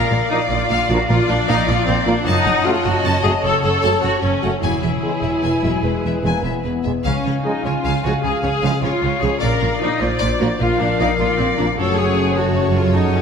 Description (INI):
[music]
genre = cinematic, heroic adventure film score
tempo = 102 BPM (dotted quarters)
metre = 12/8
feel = straight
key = unclear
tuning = A4 = 440 Hz
[part]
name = rich chamber violin section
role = melody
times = 0.0-13.2 s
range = F4 to A5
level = -28 LUFS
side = left 4 dB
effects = none
[part]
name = rich chamber violin section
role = second line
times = 0.0-13.2 s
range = G#4 to Gb5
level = -27 LUFS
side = left 3 dB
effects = none
[part]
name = silver concert flute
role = second line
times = 0.0-13.2 s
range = D5 to A5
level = -26 LUFS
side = equal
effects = none
[part]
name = warm clarinet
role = second line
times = 0.0-13.2 s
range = Bb4 to F5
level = -28 LUFS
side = left 2 dB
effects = none
[part]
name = rich symphonic viola section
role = accompaniment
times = 0.0-13.2 s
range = C4 to Bb4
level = -21 LUFS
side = equal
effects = none
[part]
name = concert harp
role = arpeggios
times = 0.0-13.2 s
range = Gb2 to Gb5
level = -27 LUFS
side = left 9 dB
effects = none
[part]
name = clear studio double bass section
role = bass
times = 0.1-13.2 s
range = E1 to Db2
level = -24 LUFS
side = right 3 dB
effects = none
[part]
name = rich symphonic cello section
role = bass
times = 0.1-13.2 s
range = E2 to Db3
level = -23 LUFS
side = right 3 dB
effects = none
[part]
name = clear trombone section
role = sustained chords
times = 0.3-13.2 s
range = Db3 to Bb3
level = -29 LUFS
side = right 4 dB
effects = none
[part]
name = warm French horn section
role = sustained chords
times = 0.3-13.2 s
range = E3 to Ab4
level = -27 LUFS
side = left 5 dB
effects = none
[sound]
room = wet scoring stage reverb, RT60 1.9 s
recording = none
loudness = -16 LUFS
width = side -6 dB against mid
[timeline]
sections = 0.0-13.2 A section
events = none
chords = 0.0 Bb; 2.3 Gbm; 4.6 E; 7.0 Db; 9.4 Bb; 11.8 Gbm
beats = 0.50 1.08 1.67 | 2.26 2.85 3.44 4.03 | 4.62 5.23 5.83 6.43 | 7.04 7.63 8.23 8.82 | 9.41 10.01 10.60 11.19 | 11.77 12.36 12.95